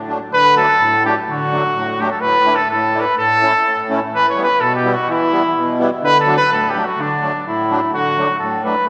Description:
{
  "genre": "alpine folk, alpine dance band",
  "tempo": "126 BPM",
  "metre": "2/4",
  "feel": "straight",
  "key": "D major",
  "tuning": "A4 = 440 Hz",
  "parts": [
    { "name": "warm trumpet", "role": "melody", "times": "0.0-8.9 s", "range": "D4 to C#5", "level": "-17 LUFS", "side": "equal", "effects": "none" },
    { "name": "musette accordion", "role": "accompaniment", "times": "0.0-8.9 s", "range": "A2 to E4", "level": "-22 LUFS", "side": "equal", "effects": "none" }
  ],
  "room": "wet concert hall reverb, RT60 2.4 s",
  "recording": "recorded in a church or concert hall",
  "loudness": "-16 LUFS",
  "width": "mono",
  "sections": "0.3-7.9 A section",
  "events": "none",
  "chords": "0.3 D; 2.2 Asus4; 3.2 A; 4.1 Em; 6.0 D",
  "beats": "| 0.31 0.80 | 1.27 1.75 | 2.22 2.69 | 3.17 3.65 | 4.12 4.60 | 5.08 5.55 | 6.02 6.49 | 6.97 7.44 | 7.92 8.40 | 8.87"
}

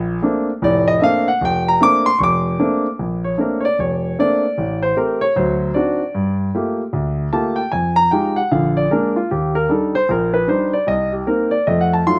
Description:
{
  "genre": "jazz",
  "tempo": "152 BPM",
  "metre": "4/4",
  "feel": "swing 64% on 8ths",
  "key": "Bb major",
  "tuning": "A4 = 436 Hz",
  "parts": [
    { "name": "warm grand piano", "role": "solo", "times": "0.0-12.2 s", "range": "F1 to D6", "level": "-18 LUFS", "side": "equal", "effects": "none" }
  ],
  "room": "light reverb",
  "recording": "recorded outdoors, with no room sound",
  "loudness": "-18 LUFS",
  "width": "mono",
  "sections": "0.0-3.0 A section; 3.0-12.2 B section",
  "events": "grand piano solo 0.0-3.0",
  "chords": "0.0 Bbmaj9; 4.6 A7#9; 5.3 D7b9; 6.1 Gm9; 7.7 Fm9; 8.5 Bb7; 9.3 Ebmaj7; 10.9 Cm7; 11.7 F7b9",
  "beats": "0.22 0.61 1.01 | 1.40 1.79 2.19 2.58 | 2.98 3.37 3.76 4.16 | 4.55 4.95 5.34 5.74 | 6.13 6.53 6.92 7.32 | 7.71 8.11 8.50 8.90 | 9.29 9.69 10.08 10.47 | 10.87 11.26 11.66 12.05"
}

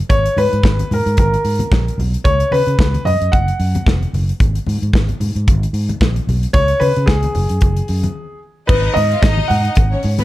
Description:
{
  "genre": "disco",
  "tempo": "112 BPM",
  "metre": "4/4",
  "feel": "swing 56% on 16ths",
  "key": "G# dorian",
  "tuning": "A4 = 440 Hz",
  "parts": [
    { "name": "warm grand piano", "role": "melody", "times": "0.1-10.2 s", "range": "G#4 to F#5", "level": "-18 LUFS", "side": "equal", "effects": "none" },
    { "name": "fingered electric bass", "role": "bass", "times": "0.1-10.2 s", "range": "E#1 to C#3", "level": "-17 LUFS", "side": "equal", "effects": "none" },
    { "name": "modern studio drum kit", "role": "drums", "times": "0.1-10.2 s", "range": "crash cymbal, hi-hat, kick drum, snare drum", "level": "-17 LUFS", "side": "equal", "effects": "none" },
    { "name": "congas", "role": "percussion", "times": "0.1-10.2 s", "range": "none", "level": "-26 LUFS", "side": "left 3 dB", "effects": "none" },
    { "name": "clear studio string section", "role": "second line", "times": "8.7-10.2 s", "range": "B3 to E#5", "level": "-24 LUFS", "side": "left 2 dB", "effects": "none" }
  ],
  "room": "little or no reverb",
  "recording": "dark, warm production",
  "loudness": "-13 LUFS",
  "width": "side -16 dB against mid",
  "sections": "0.0-8.7 A section; 8.7-10.2 B section",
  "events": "break 8.2-8.7",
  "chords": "0.1 G#madd9; 2.2 Bsus2/C#; 3.1 D#madd9; 4.4 N.C.; 6.5 G#madd11/C#; 7.4 F#sus2; 8.2 N.C.; 8.7 G#m7",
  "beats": "| 0.10 0.63 1.17 1.71 | 2.25 2.79 3.32 3.86 | 4.40 4.94 5.47 6.01 | 6.55 7.09 7.62 8.16 | 8.70 9.23 9.77"
}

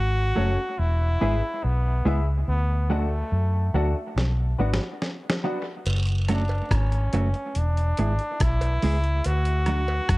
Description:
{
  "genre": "dub reggae",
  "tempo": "71 BPM",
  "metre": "4/4",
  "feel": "straight",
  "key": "unclear",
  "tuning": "A4 = 440 Hz",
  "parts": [
    { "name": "brilliant trombone", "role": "melody", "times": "0.0-10.2 s", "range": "A3 to F#4", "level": "-30 LUFS", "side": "equal", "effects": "dub echo" },
    { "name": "vintage muted fingered electric bass", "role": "bass", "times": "0.0-10.2 s", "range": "E1 to F#2", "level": "-23 LUFS", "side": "equal", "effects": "none" },
    { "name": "mellow electric guitar", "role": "accompaniment", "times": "0.4-9.8 s", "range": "F#3 to G#4", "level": "-30 LUFS", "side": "right 2 dB", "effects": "dub echo" },
    { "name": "warm upright piano", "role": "stabs", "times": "0.4-5.6 s", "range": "C#4 to F#5", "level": "-34 LUFS", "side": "left 4 dB", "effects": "dub echo" },
    { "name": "dusty soul sampler-style drum kit", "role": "drums", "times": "4.2-10.2 s", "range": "hi-hat, kick drum, rim click, snare drum", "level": "-27 LUFS", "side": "equal", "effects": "none" },
    { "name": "cowbell and jawbone-type rattle", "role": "percussion", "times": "5.9-10.1 s", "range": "none", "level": "-37 LUFS", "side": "right 3 dB", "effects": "dub echo" }
  ],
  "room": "small room ambience",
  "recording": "dark, warm production",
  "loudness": "-22 LUFS",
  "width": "side -20 dB against mid",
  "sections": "0.0-10.2 A section",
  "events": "drum fill 4.2-5.9",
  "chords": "0.0 F#m; 0.8 E; 2.5 D; 4.2 Bm; 5.9 F#m; 7.6 E; 9.2 D",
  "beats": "0.79 1.63 | 2.48 3.33 4.17 5.02 | 5.86 6.71 7.56 8.40 | 9.25 10.09"
}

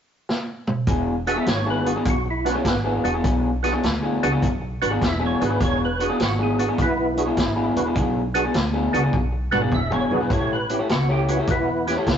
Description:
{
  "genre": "electric blues shuffle",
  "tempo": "102 BPM",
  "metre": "4/4",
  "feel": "swing 67% on 8ths",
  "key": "E mixolydian",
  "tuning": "A4 = 440 Hz",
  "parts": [
    { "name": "vintage drum kit", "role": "drums", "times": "0.3-12.2 s", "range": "hi-hat, kick drum, snare drum, toms", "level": "-25 LUFS", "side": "equal", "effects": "none" },
    { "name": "electric guitar through a small old amp", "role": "riff", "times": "0.9-12.1 s", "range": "E3 to C#5", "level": "-24 LUFS", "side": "left 2 dB", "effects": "none" },
    { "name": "upright bass", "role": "bass", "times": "0.9-12.2 s", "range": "E1 to E2", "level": "-26 LUFS", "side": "equal", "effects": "none" },
    { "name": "percussive tonewheel organ", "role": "accompaniment", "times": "1.3-12.0 s", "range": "B3 to E5", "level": "-24 LUFS", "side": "right 2 dB", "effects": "overdrive, chorus vibrato, slow rotary speaker" }
  ],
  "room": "moderate stone room reverb, RT60 1.3 s",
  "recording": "rough rehearsal-room recording, tube saturation, nothing above 7.7 kHz",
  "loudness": "-19 LUFS",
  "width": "side -8 dB against mid",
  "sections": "0.9-12.2 A section",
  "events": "drum fill 0.3-0.9, 9.1-10.3",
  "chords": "0.0 N.C.; 0.9 E7; 10.3 A7",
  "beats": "0.29 | 0.88 1.47 2.06 2.65 | 3.25 3.84 4.43 5.02 | 5.61 6.20 6.78 7.37 | 7.96 8.55 9.13 9.72 | 10.31 10.89 11.48 12.07"
}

